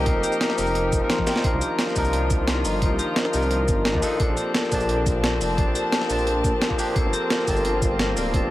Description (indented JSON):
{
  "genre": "liquid drum and bass",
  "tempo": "174 BPM",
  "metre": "4/4",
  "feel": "straight",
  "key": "C dorian",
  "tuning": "A4 = 439 Hz",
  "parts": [
    { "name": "barky tine electric piano", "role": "accompaniment", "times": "0.0-8.5 s", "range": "F3 to A5", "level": "-26 LUFS", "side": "equal", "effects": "overdrive, tape echo" },
    { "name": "clear chamber string section", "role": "sustained chords", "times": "0.0-8.5 s", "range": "Eb3 to A5", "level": "-29 LUFS", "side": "left 2 dB", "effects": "sidechain pumping" },
    { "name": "vibraphone with hard mallets", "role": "arpeggios", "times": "0.0-8.5 s", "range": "G4 to C6", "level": "-28 LUFS", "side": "left 3 dB", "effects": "digital delay" },
    { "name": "dark detuned saw bass", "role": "bass", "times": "0.0-8.5 s", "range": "D1 to Eb2", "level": "-26 LUFS", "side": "equal", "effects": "none" },
    { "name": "breakbeat sampler-style drum kit", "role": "drums", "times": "0.1-8.4 s", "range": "hi-hat, shaker, snare drum, toms", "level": "-26 LUFS", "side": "equal", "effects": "none" },
    { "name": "electronic kick drum", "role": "drums", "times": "0.1-8.4 s", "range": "none", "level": "-25 LUFS", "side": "equal", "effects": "none" }
  ],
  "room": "light reverb",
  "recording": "none",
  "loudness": "-20 LUFS",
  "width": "side -15 dB against mid",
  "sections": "0.0-8.5 A section",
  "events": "drum fill 1.1-1.4",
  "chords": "0.0 F7sus4; 1.4 Cm11; 4.2 Bbmaj7; 7.0 Gm11",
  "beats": "| 0.06 0.41 0.75 1.10 | 1.44 1.79 2.13 2.48 | 2.82 3.17 3.51 3.86 | 4.20 4.55 4.89 5.24 | 5.58 5.92 6.27 6.61 | 6.96 7.30 7.65 7.99 | 8.34"
}